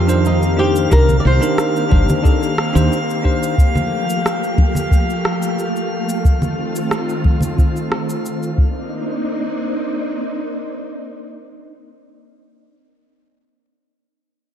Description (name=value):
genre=sunset chillout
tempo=90 BPM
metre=4/4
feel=straight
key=C dorian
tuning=A4 = 441 Hz
part: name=flamenco guitar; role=melody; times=0.0-1.9 s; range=Eb4 to D5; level=-21 LUFS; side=left 1 dB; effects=tape echo
part: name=soft string machine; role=sustained chords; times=0.0-12.1 s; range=Eb3 to G4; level=-21 LUFS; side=equal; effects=ensemble chorus
part: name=woody fretless electric bass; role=bass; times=0.0-2.9 s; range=G1 to F2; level=-15 LUFS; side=equal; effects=ensemble chorus
part: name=drifting glass-harmonics texture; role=texture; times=0.0-8.9 s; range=F5 to F6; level=-26 LUFS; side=left 2 dB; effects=chorus, built-in reverb
part: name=bell-like tine electric piano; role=accompaniment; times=0.1-3.5 s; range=D4 to C5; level=-22 LUFS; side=moving between left 7 dB and right 4 dB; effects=auto-pan, ping-pong delay
part: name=electronic shaker and rim click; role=drums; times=0.1-8.6 s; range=none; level=-26 LUFS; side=right 1 dB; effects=none
part: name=electronic kick drum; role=drums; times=0.9-8.7 s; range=none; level=-14 LUFS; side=equal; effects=none
part: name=congas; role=percussion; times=1.1-7.5 s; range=none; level=-22 LUFS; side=equal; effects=none
room=light reverb, digital ambience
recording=dark, warm production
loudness=-15 LUFS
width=side -9 dB against mid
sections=0.0-8.9 A section; 8.9-11.6 B section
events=none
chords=0.0 Cm9; 3.6 Gm9; 6.2 F7; 8.6 Cm9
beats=0.25 | 0.91 1.58 2.25 2.91 | 3.58 4.25 4.91 5.58 | 6.25 6.91 7.58 8.25 | 8.91 9.58 10.25 10.91